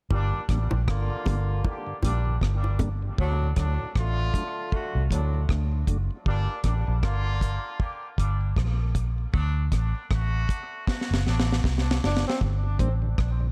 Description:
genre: dub reggae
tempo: 78 BPM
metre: 4/4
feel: swing 58% on 16ths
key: G harmonic minor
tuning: A4 = 441 Hz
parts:
  - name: warm horn section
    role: second line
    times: 0.1-11.6 s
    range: A2 to G4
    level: -36 LUFS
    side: equal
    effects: high-pass filter, dub echo
  - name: vintage muted fingered electric bass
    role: bass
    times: 0.1-13.5 s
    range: F#1 to D2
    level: -27 LUFS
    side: equal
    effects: none
  - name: deep reggae drum kit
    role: drums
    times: 0.1-13.4 s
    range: hi-hat, kick drum, rim click, snare drum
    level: -29 LUFS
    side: equal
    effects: none
  - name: bongos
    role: percussion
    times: 0.1-3.0 s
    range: none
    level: -41 LUFS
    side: equal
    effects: dub echo
  - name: mellow tonewheel organ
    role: accompaniment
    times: 0.3-13.5 s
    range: D2 to D4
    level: -41 LUFS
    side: equal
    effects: none
  - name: breathy tenor saxophone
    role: melody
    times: 12.1-12.4 s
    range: C4 to D4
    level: -35 LUFS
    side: equal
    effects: dub echo
room: studio ambience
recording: echo-heavy mix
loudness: -26 LUFS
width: mono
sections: 0.1-12.4 A section; 12.4-13.5 B section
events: part muted 3.2-12.4; filter sweep 3.2-12.4; drum fill 10.9-12.4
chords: 0.1 Gm; 3.2 D; 6.3 Gm; 9.3 D; 12.4 Gm

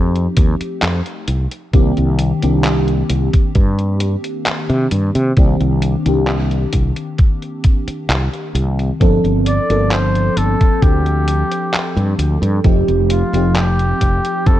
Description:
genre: vaporwave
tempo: 66 BPM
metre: 4/4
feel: straight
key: C dorian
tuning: A4 = 440 Hz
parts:
  - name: FM electric piano with soft pad layer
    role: accompaniment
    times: 0.0-14.6 s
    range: Eb3 to A4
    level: -19 LUFS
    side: left 1 dB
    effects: phaser, wide subtle chorus, analog delay
  - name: fretless electric bass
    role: bass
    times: 0.0-14.6 s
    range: F1 to C3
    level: -16 LUFS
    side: equal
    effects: none
  - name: detuned 8-bit digital drum machine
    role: drums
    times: 0.2-14.6 s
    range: handclaps, hi-hat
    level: -23 LUFS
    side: equal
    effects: vintage 12-bit sampler grit, small room ambience
  - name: electronic kick drum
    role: drums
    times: 0.4-14.6 s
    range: none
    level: -13 LUFS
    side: equal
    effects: vintage 12-bit sampler grit, small room ambience
  - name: breathy flugelhorn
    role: melody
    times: 9.5-14.6 s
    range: F4 to D5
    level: -21 LUFS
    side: equal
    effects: vintage 12-bit sampler grit, tape echo
room: light reverb, digital ambience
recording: cassette tape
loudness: -13 LUFS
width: side -13 dB against mid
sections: 0.0-14.6 A section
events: none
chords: 0.0 F9; 1.3 Cm9; 9.0 Gm11; 12.6 F9

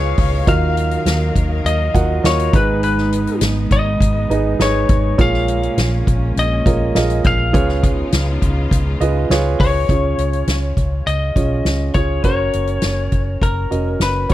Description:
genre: piano-driven pop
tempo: 102 BPM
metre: 4/4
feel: straight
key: unclear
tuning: A4 = 438 Hz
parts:
  - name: lightly driven lead guitar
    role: melody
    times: 0.0-14.3 s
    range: Bb4 to F5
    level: -22 LUFS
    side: left 4 dB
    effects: none
  - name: warm concert grand piano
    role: accompaniment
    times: 0.0-14.3 s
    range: Ab2 to Gb5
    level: -21 LUFS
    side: right 4 dB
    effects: none
  - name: warm studio string section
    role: sustained chords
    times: 0.0-9.9 s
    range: Db3 to F5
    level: -28 LUFS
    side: left 3 dB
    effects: none
  - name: vintage muted fingered electric bass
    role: bass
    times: 0.0-14.3 s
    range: F1 to Eb2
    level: -19 LUFS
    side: equal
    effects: none
  - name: soft-mallet drum kit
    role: drums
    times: 0.2-14.3 s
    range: hi-hat, kick drum, snare drum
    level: -19 LUFS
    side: equal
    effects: none
room: little or no reverb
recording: dry, close 1970s-style studio recording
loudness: -14 LUFS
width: side -14 dB against mid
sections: 0.0-9.9 A section; 9.9-14.3 B section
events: none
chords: 0.5 Ebmadd9; 2.5 Abm; 5.2 Bbm7; 7.5 Db7; 9.9 Db; 12.2 Gb

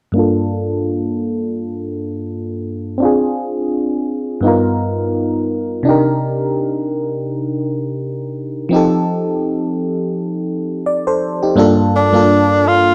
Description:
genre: R&B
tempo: 84 BPM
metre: 4/4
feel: swing 58% on 16ths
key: G minor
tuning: A4 = 441 Hz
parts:
  - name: FM electric piano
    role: accompaniment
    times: 0.1-12.9 s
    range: G2 to D5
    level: -18 LUFS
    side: equal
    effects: chorus, low-pass filter
  - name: breathy tenor saxophone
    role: melody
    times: 12.0-12.9 s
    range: D4 to F4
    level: -14 LUFS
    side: equal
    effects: slapback echo
room: studio reverb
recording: dry, close 1970s-style studio recording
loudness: -17 LUFS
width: mono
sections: 0.1-11.6 A section; 11.6-12.9 B section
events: filter sweep on FM electric piano 0.1-11.6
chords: 0.1 Gm9; 3.0 Dm7b5; 4.4 G7alt; 5.9 Cm9; 8.7 F9; 11.6 Gm9

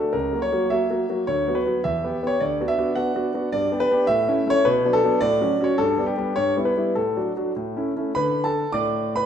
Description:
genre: classical-period piano sonatina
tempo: 106 BPM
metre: 2/4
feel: rubato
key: B minor, D major from 3.5 s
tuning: A4 = 442 Hz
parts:
  - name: clear concert grand piano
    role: solo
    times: 0.0-9.3 s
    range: C#2 to D6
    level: -20 LUFS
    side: equal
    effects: none
room: wet recital hall reverb, RT60 1.6 s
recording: minimal, uncompressed stereo recording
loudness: -20 LUFS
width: side -8 dB against mid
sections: 0.0-8.2 A section; 8.2-9.3 B section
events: none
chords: 0.1 F#7/C#; 1.3 Bm/D; 1.8 Em; 2.4 Bm/D; 3.5 G; 4.1 A; 4.7 Bm; 5.2 F#m/A; 5.8 G; 6.4 Em/G; 7.0 D/A; 7.6 A; 8.2 D5

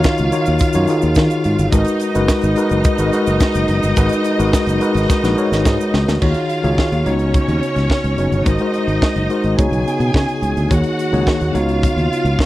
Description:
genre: disco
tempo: 107 BPM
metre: 4/4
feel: straight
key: unclear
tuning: A4 = 440 Hz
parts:
  - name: clear studio string section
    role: second line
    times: 0.0-12.5 s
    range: Db4 to Ab5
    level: -22 LUFS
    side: right 1 dB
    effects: none
  - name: mellow tine electric piano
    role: accompaniment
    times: 0.0-12.5 s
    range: Db3 to Db5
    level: -18 LUFS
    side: left 1 dB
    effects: fast stereo tremolo
  - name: tight funk drum kit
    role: drums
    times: 0.0-12.5 s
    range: crash cymbal, hi-hat, kick drum, snare drum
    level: -17 LUFS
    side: equal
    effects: none
  - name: tube shaker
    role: percussion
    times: 0.0-6.2 s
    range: none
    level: -37 LUFS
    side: right 17 dB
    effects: none
  - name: fingered electric bass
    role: bass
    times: 0.2-12.4 s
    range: Gb1 to Eb3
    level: -18 LUFS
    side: equal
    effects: none
room: little or no reverb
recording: dry, close 1970s-style studio recording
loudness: -14 LUFS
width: side -16 dB against mid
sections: 0.0-6.2 A section; 6.2-12.5 B section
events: drum fill 5.1-6.2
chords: 0.0 Ebm7; 1.7 Abm7; 6.2 Ebm11; 7.1 Db9sus4; 8.5 Ab9; 9.6 Db9sus4; 10.7 Ebm7; 11.5 Db9sus4

